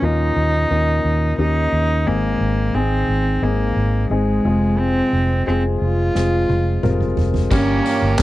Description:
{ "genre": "piano-driven pop", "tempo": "88 BPM", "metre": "4/4", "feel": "straight", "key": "F minor", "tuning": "A4 = 440 Hz", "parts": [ { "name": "rich cello", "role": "melody", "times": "0.0-8.2 s", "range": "Ab3 to F4", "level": "-21 LUFS", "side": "right 1 dB", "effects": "none" }, { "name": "dark grand piano", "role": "accompaniment", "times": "0.0-8.2 s", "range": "G2 to Bb4", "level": "-22 LUFS", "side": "left 4 dB", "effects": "none" }, { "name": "vintage muted fingered electric bass", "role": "bass", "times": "0.0-8.2 s", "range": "F1 to Eb2", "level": "-20 LUFS", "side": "equal", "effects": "none" }, { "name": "unplugged drum kit", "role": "drums", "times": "6.2-8.2 s", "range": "crash cymbal, handclaps, hi-hat, kick drum, snare drum, toms", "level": "-22 LUFS", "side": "right 1 dB", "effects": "none" }, { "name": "muted French horn section", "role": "second line", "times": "7.5-8.2 s", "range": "Bb2 to Bb3", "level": "-25 LUFS", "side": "right 8 dB", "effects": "none" }, { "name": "overdriven electric guitar", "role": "riff", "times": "7.5-8.2 s", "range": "G3 to G4", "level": "-24 LUFS", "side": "right 5 dB", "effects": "none" }, { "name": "tambourine", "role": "percussion", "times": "7.5-8.0 s", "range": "none", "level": "-35 LUFS", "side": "left 12 dB", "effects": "none" } ], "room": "light reverb", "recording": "dry, close 1970s-style studio recording", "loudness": "-16 LUFS", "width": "side -16 dB against mid", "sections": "0.0-7.5 A section", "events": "drum fill 6.2-7.5", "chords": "0.0 Eb7; 2.1 Ab; 4.5 Fm; 7.5 Gdim" }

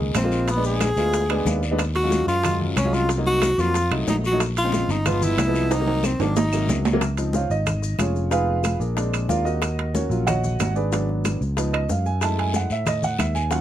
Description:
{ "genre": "Afro-Cuban jazz", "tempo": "184 BPM", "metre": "4/4", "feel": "straight", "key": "Bb minor, Db major from 7.0 s", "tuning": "A4 = 441 Hz", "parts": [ { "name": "clear upright piano", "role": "accompaniment", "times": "0.0-13.6 s", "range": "C3 to A5", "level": "-25 LUFS", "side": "right 1 dB", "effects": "none" }, { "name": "sustaining fretless electric bass", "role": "bass", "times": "0.0-13.6 s", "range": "F1 to A2", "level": "-24 LUFS", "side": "equal", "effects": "none" }, { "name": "maracas", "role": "percussion", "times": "0.1-13.6 s", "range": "none", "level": "-37 LUFS", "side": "left 6 dB", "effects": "none" }, { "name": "timbales", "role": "percussion", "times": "0.1-13.6 s", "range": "none", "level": "-28 LUFS", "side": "right 6 dB", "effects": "none" }, { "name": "clear tenor saxophone", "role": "melody", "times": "0.2-6.8 s", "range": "Cb4 to Ab4", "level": "-23 LUFS", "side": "equal", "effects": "slapback echo" }, { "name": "bongos", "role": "percussion", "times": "0.2-13.6 s", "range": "none", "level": "-32 LUFS", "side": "left 6 dB", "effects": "none" }, { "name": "claves", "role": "percussion", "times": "0.2-13.4 s", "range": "none", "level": "-34 LUFS", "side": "right 6 dB", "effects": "none" }, { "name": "congas", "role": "percussion", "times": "0.2-13.6 s", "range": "none", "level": "-30 LUFS", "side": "left 1 dB", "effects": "none" }, { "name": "guiro", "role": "percussion", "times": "0.2-7.0, 12.2-13.6 s", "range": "none", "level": "-37 LUFS", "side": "left 6 dB", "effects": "none" } ], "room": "light reverb", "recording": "close, detailed microphones", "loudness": "-20 LUFS", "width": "side -12 dB against mid", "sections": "0.0-7.0 A section; 7.0-13.6 B section", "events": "upright piano fill 1.1-1.8; drum fill 5.7-7.0; upright piano solo 7.0-13.6", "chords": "0.5 Bb7b9; 1.8 Ebm11; 3.1 Cm7b5; 3.8 F7b9; 4.4 Bbm9; 5.1 G7b9; 5.7 Cm7b5; 6.4 Ab7; 7.0 Dbmaj7; 8.3 Fm7b5; 9.0 Bb7; 9.6 Ebm7; 10.9 Abm7b5; 11.6 Db7; 12.2 Gbm7" }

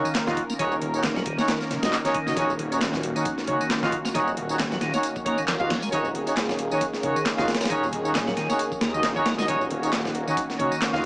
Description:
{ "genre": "breakbeat, breaks", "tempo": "135 BPM", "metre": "4/4", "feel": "swing 56% on 16ths", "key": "Eb minor", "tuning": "A4 = 440 Hz", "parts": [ { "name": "phased analog pad", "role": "sustained chords", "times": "0.0-11.1 s", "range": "Eb3 to Bb4", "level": "-29 LUFS", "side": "equal", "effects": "phaser, chorus, vintage 12-bit sampler grit, sidechain pumping" }, { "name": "tonewheel organ", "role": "riff", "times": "0.0-11.0 s", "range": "Db3 to Bb3", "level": "-32 LUFS", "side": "equal", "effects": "slow rotary speaker, digital delay" }, { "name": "clear horn section", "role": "stabs", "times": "0.0-11.1 s", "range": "Db4 to F5", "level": "-26 LUFS", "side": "equal", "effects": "digital delay" }, { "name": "breakbeat sampler-style drum kit", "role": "drums", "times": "0.1-11.0 s", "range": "hi-hat, kick drum, snare drum", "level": "-28 LUFS", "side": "equal", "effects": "none" }, { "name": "electronic tambourine and handclaps", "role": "drums", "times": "0.1-11.0 s", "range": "none", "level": "-32 LUFS", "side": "equal", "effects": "none" }, { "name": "phased detuned saw bass", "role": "bass", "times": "0.3-11.0 s", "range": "Eb1 to Eb2", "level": "-33 LUFS", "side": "equal", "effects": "phaser" }, { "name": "congas", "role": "percussion", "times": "0.3-11.0 s", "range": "none", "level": "-39 LUFS", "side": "equal", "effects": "none" } ], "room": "light reverb", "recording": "small speaker sound", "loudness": "-22 LUFS", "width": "side -28 dB against mid", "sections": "0.0-11.1 A section", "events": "none", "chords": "0.0 Ebm7" }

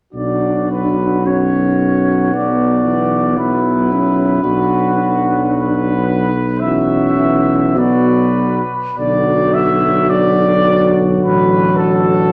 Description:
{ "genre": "classical, hymn-like piece for brass band", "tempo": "48-57 BPM", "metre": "4/4", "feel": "rubato", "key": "B minor", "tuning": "A4 = 440 Hz", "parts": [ { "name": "warm trumpet section", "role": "melody", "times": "0.1-12.3 s", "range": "A4 to E5", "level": "-21 LUFS", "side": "equal", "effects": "none" }, { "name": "warm flugelhorn", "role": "second line", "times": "0.1-12.3 s", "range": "E4 to F#4", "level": "-25 LUFS", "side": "equal", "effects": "none" }, { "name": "mellow euphonium", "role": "accompaniment", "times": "0.1-12.3 s", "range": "F#3 to D4", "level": "-19 LUFS", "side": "equal", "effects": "none" }, { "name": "mellow trombone", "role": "accompaniment", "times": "0.1-12.3 s", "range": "D3 to F#3", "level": "-24 LUFS", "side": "equal", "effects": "none" }, { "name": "warm tuba", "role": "bass", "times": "0.1-12.3 s", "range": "A1 to B1", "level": "-21 LUFS", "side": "equal", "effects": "none" } ], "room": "wet recital hall reverb, RT60 1.4 s", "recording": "none", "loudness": "-15 LUFS", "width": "mono", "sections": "0.1-9.0 A section; 9.0-12.3 B section", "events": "none", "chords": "0.1 Bm; 11.2 F#m/A" }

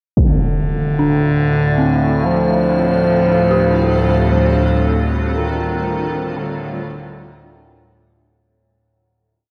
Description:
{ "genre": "dark ambient drone", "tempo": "58 BPM", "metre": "4/4", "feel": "straight", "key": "D in sen", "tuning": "A4 = 440 Hz", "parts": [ { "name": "clear bass clarinet", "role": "melody", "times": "0.2-7.9 s", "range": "D3 to F3", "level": "-20 LUFS", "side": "equal", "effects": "delay" }, { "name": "granular cloud pad", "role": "sustained chords", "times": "2.6-8.5 s", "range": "G3 to A4", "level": "-27 LUFS", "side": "equal", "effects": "built-in reverb, shimmer reverb" }, { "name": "overtone-sweeping drone", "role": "drone", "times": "0.9-8.6 s", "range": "D2 to A2", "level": "-21 LUFS", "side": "equal", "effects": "chorus, built-in reverb, phaser" }, { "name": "impact", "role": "percussion", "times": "0.2-0.4 s", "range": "none", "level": "-20 LUFS", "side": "equal", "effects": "low-pass filter on sfx" }, { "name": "icy glass pad", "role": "texture", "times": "0.8-8.5 s", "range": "F5", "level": "-35 LUFS", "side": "equal", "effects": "chorus, built-in reverb, shimmer reverb" }, { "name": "dark detuned synth bell", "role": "arpeggios", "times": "1.0-9.5 s", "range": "C4 to G4", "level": "-26 LUFS", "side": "equal", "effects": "chorus, shimmer reverb, delay" } ], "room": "moderate huge ambient reverb, RT60 8.4 s", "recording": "worn, warbling old tape, cassette tape, warbly pitch drift", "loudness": "-16 LUFS", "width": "mono", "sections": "0.2-8.5 A section", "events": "fade-in on ambient pad 0.2-8.5; fade-out on ambient pad 0.2-8.5; fade-out 4.3-8.5", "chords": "0.2 Dm" }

